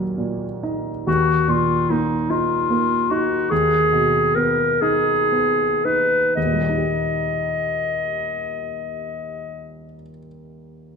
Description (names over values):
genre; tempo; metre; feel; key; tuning
classical, romantic duo for clarinet and grand piano; 36-50 BPM (dotted quarters); 6/8; rubato; unclear; A4 = 445 Hz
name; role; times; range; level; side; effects
clear concert grand piano; accompaniment; 0.0-11.0 s; Eb2 to Eb5; -24 LUFS; right 2 dB; none
clear clarinet; melody; 1.1-9.8 s; Eb4 to Eb5; -19 LUFS; left 2 dB; none
room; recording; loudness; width
wet recital hall reverb, RT60 1.6 s; none; -18 LUFS; side -5 dB against mid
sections
0.0-1.1 A section; 1.1-6.4 B section; 6.4-9.2 C section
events
slowing down 0.0-6.4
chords
0.0 Ebm; 1.1 Eb5; 3.5 Abm/Eb; 6.4 Eb